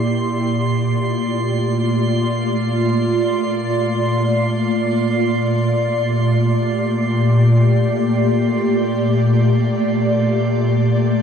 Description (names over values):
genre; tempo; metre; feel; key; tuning
ambient; free time; none; none; unclear; A4 = 440 Hz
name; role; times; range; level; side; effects
ethereal airy pad; sustained chords; 0.0-11.2 s; Bb2 to D5; -16 LUFS; equal; ensemble chorus, built-in reverb, phaser
drifting glass-harmonics texture; texture; 0.0-11.2 s; C6; -28 LUFS; right 3 dB; chorus, built-in reverb, shimmer reverb
room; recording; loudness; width
wet huge ambient reverb, RT60 8.4 s; dark, warm production; -15 LUFS; side -7 dB against mid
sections
0.0-11.2 A section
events
fade-out on synth texture 0.0-11.2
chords
0.1 Gmadd9/Bb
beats
free time